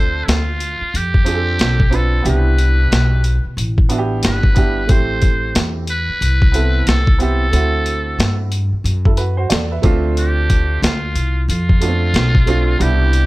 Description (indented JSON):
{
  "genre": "hip hop, jazz-hop",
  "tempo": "91 BPM",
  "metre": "4/4",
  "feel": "swing 62% on 16ths",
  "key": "unclear",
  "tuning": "A4 = 440 Hz",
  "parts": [
    { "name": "trumpet with metal mute", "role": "melody", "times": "0.0-13.3 s", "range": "E4 to C5", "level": "-22 LUFS", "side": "right 1 dB", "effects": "none" },
    { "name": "clear baby grand piano", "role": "accompaniment", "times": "0.0-13.3 s", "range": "G3 to E5", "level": "-22 LUFS", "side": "right 4 dB", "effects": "none" },
    { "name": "upright bass", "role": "bass", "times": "0.0-13.3 s", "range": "G1 to G2", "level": "-17 LUFS", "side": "equal", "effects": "none" },
    { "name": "boom bap sampler-style drum kit", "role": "drums", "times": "0.3-13.3 s", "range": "hi-hat, kick drum, snare drum", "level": "-16 LUFS", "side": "equal", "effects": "none" }
  ],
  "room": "small room ambience",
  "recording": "none",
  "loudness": "-13 LUFS",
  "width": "side -19 dB against mid",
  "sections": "0.0-13.3 A section",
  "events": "none",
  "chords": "0.0 G9sus4/D; 2.3 Cmaj9; 4.9 Am9; 7.5 D9; 9.8 G9sus4",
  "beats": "0.28 0.94 1.60 | 2.25 2.91 3.57 4.23 | 4.89 5.55 6.21 6.87 | 7.53 8.19 8.85 9.51 | 10.17 10.83 11.49 12.14 | 12.80"
}